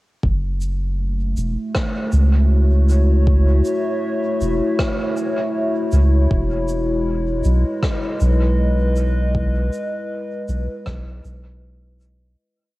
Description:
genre	ambient dub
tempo	79 BPM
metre	4/4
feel	swing 57% on 16ths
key	F# dorian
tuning	A4 = 440 Hz
part	warbly tape-like pad	sustained chords	1.0-12.4 s	G#3 to E5	-22 LUFS	left 1 dB	chorus, built-in reverb, cassette tape
part	soft dub sub bass	bass	0.2-12.4 s	E1 to C#2	-16 LUFS	equal	none
part	electronic kick drum	drums	0.2-11.0 s	none	-22 LUFS	equal	none
part	shaker and rim click	drums	0.6-12.2 s	none	-30 LUFS	equal	dub echo
room	light reverb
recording	home recording on cassette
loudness	-17 LUFS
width	side -18 dB against mid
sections	0.2-12.4 groove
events	fade-out 8.3-12.4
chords	0.2 F#m7; 6.3 Emaj7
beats	| 0.23 0.99 1.75 2.51 | 3.27 4.03 4.79 5.55 | 6.31 7.07 7.83 8.59 | 9.35 10.11 10.87 11.63

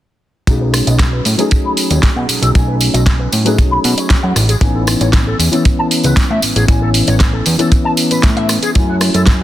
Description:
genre	nu-disco, nu disco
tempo	116 BPM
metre	4/4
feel	straight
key	unclear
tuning	A4 = 440 Hz
part	dark concert grand piano	accompaniment	0.5-9.4 s	E3 to G#5	-18 LUFS	left 1 dB	sidechain pumping
part	fat analog bass	bass	0.5-9.4 s	A1 to B2	-15 LUFS	equal	tube saturation
part	kick drum	drums	0.5-9.4 s	none	-12 LUFS	equal	studio reverb
part	pop drum kit	drums	0.5-9.4 s	hi-hat, rim click, snare drum	-18 LUFS	right 1 dB	studio reverb
part	tambourine	percussion	0.5-9.4 s	none	-24 LUFS	right 1 dB	none
part	electric guitar with an envelope filter	riff	0.6-9.4 s	F#4 to B5	-21 LUFS	left 2 dB	ensemble chorus, low-pass filter, dub echo
room	little or no reverb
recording	dense, heavily limited modern master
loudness	-11 LUFS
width	side -14 dB against mid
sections	0.5-9.4 A section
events	filter sweep on clean electric guitar 0.5-9.4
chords	0.5 B13; 4.4 Amaj9#11; 8.8 F#m9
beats	| 0.48 1.00 1.51 2.03 | 2.55 3.07 3.58 4.10 | 4.62 5.13 5.65 6.17 | 6.69 7.20 7.72 8.24 | 8.76 9.27

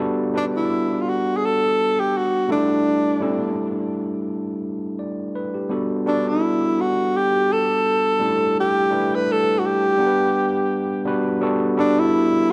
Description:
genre	soul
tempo	84 BPM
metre	4/4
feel	swing 54% on 16ths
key	G major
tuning	A4 = 441 Hz
part	overdriven tine electric piano	accompaniment	0.0-12.5 s	G3 to F#5	-25 LUFS	equal	none
part	breathy tenor saxophone	melody	0.4-12.5 s	D4 to B4	-22 LUFS	equal	tape echo
room	moderate echo chamber reverb, RT60 1.8 s, small room ambience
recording	dark, warm production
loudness	-21 LUFS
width	mono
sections	0.0-11.4 A section; 11.4-12.5 A section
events	none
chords	0.0 Gmaj9; 2.5 A7sus4; 5.7 Gmaj9; 8.2 A7sus4; 10.0 Gmaj7; 11.4 Gmaj9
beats	0.70 1.42 2.13 | 2.85 3.56 4.28 4.99 | 5.71 6.42 7.14 7.85 | 8.56 9.28 9.99 10.71 | 11.42 12.13

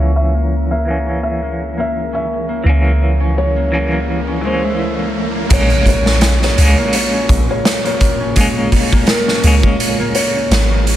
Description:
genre	trip hop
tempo	84 BPM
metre	4/4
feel	swing 55% on 16ths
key	Bb minor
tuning	A4 = 445 Hz
part	felt-muted upright piano	melody	0.0-10.6 s	Bb4 to Fb5	-22 LUFS	equal	tape echo
part	semi-hollow electric guitar	accompaniment	0.0-11.0 s	Fb3 to Db4	-21 LUFS	equal	tremolo
part	deep dark ambient pad	sustained chords	0.0-11.0 s	Bb3 to Fb5	-27 LUFS	equal	chorus, built-in reverb
part	concert harp	arpeggios	0.0-11.0 s	Ab3 to Fb4	-24 LUFS	left 3 dB	vintage 12-bit sampler grit, low-pass filter, tape echo
part	soft 808-style bass	bass	0.0-11.0 s	Ab1 to Db2	-16 LUFS	equal	none
part	riser and impact	sound effects	2.1-8.4 s	none	-24 LUFS	right 1 dB	none
part	wind-like tuned noise texture	texture	0.0-11.0 s	Bb3 to Bb4	-31 LUFS	left 3 dB	none
part	raw garage drum kit	drums	5.5-11.0 s	crash cymbal, hi-hat, kick drum, snare drum	-15 LUFS	equal	none
room	small room ambience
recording	low-pass filter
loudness	-12 LUFS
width	side -12 dB against mid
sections	0.0-5.5 A section; 5.5-11.0 B section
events	filter sweep on harp 0.0-5.5; filter sweep 0.0-5.5; riser 2.1-5.5; impact 5.5-8.4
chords	0.0 Dbm6; 5.5 Bbm7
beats	0.51 1.22 1.94 | 2.65 3.37 4.08 4.80 | 5.51 6.22 6.94 7.65 | 8.37 9.08 9.80 10.51

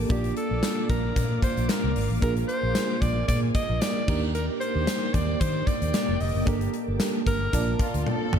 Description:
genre	1980s-style pop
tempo	113 BPM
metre	4/4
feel	swing 55% on 16ths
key	Bb major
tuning	A4 = 440 Hz
part	FM electric piano with tremolo	accompaniment	0.0-8.4 s	Bb3 to A5	-32 LUFS	right 6 dB	none
part	string machine, cellos	sustained chords	0.0-8.4 s	Bb3 to D6	-31 LUFS	left 1 dB	ensemble chorus
part	vintage muted fingered electric bass	bass	0.0-8.4 s	F1 to Eb3	-28 LUFS	equal	none
part	bright alto saxophone	melody	0.1-8.0 s	G4 to Eb5	-31 LUFS	equal	ping-pong delay
part	gated 80s drum kit	drums	0.1-8.4 s	crash cymbal, hi-hat, kick drum, snare drum, tambourine, toms	-27 LUFS	left 1 dB	none
part	warm studio violin section	second line	7.8-8.4 s	F4 to A4	-33 LUFS	left 5 dB	ping-pong delay
room	moderate plate reverb, RT60 2.9 s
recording	dreamy mix soaked in reverb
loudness	-23 LUFS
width	side -8 dB against mid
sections	0.0-8.4 A section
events	drum fill 8.1-8.4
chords	0.1 Bb; 2.2 Bb7; 4.1 Ebmaj7; 6.5 Gmadd9; 7.5 Bbmaj7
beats	| 0.10 0.63 1.16 1.69 | 2.22 2.75 3.29 3.82 | 4.35 4.88 5.41 5.94 | 6.47 7.00 7.53 8.06

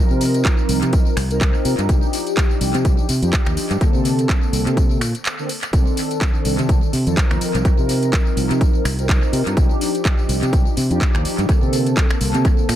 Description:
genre	filtered disco house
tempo	125 BPM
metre	4/4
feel	swing 57% on 16ths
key	unclear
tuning	A4 = 440 Hz
part	mellow synth brass	accompaniment	0.0-12.7 s	D3 to Bb4	-23 LUFS	equal	chorus, phaser, sidechain pumping, analog delay
part	overdriven fingered electric bass	bass	0.1-12.8 s	C2 to C3	-20 LUFS	equal	sidechain pumping
part	house drum kit	drums	0.1-12.8 s	finger snaps, handclaps, hi-hat, tambourine	-26 LUFS	equal	sidechain pumping on hats, sidechain pumping on perc, analog delay
part	electronic kick drum	drums	0.5-12.6 s	none	-17 LUFS	equal	overdrive
room	little or no reverb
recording	echo-heavy mix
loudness	-16 LUFS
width	side -12 dB against mid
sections	0.0-12.8 A section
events	break 5.2-5.7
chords	0.0 F7sus4/C; 1.9 Ebmaj9/C; 3.8 Bbmaj9/C; 5.7 Cm69; 7.4 F7sus4/C; 9.6 Ebmaj9/C; 11.5 Bbmaj9/C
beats	0.45 0.93 1.41 | 1.89 2.37 2.85 3.33 | 3.81 4.29 4.77 5.25 | 5.73 6.21 6.69 7.17 | 7.65 8.13 8.61 9.09 | 9.57 10.05 10.53 11.01 | 11.49 11.97 12.45

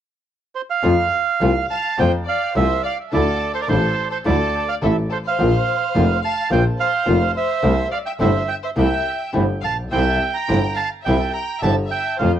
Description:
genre	tango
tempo	106 BPM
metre	4/4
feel	rubato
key	F major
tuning	A4 = 439 Hz
part	bandoneon	melody	0.6-12.3 s	C5 to Bb5	-22 LUFS	right 7 dB	cassette tape, analog delay
part	nylon-string guitar	accompaniment	0.8-12.3 s	C3 to F4	-21 LUFS	left 1 dB	none
part	clear double bass	bass	0.8-12.4 s	F1 to F2	-20 LUFS	left 1 dB	none
part	bright studio violin section	second line	1.7-12.3 s	A4 to G5	-27 LUFS	left 10 dB	none
room	light reverb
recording	home recording on cassette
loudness	-17 LUFS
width	side -10 dB against mid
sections	0.8-12.4 A section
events	none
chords	0.0 N.C.; 0.8 F; 3.1 Dsus2; 5.4 Bbsus2; 7.6 C6; 9.9 C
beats	0.25 | 0.83 1.40 1.98 2.55 | 3.12 3.69 4.25 4.82 | 5.38 5.95 6.50 7.07 | 7.63 8.20 8.77 9.34 | 9.91 10.49 11.06 11.63 | 12.20

